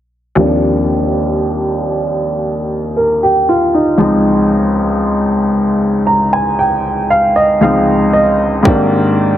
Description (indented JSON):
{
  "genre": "contemporary R&B",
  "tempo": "58 BPM",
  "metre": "4/4",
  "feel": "straight",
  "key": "Eb major",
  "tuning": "A4 = 435 Hz",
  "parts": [
    { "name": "clear grand piano", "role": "accompaniment", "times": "0.4-9.4 s", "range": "Db2 to Bb5", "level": "-11 LUFS", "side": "equal", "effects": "low-pass filter" },
    { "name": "electronic kick drum", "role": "drums", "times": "8.7-8.9 s", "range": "none", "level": "-12 LUFS", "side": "equal", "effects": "none" }
  ],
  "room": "moderate concert hall reverb, RT60 2.6 s",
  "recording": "heavily compressed radio sound",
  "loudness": "-11 LUFS",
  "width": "side -12 dB against mid",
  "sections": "0.4-9.4 A section",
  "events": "filter sweep on grand piano 0.4-9.4; grand piano fill 5.5-8.7",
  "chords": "0.4 Ebmaj13; 4.0 Dbmaj9; 8.7 Abmaj9#11",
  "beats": "| 0.38 1.41 2.45 3.48 | 4.51 5.55 6.58 7.62 | 8.65"
}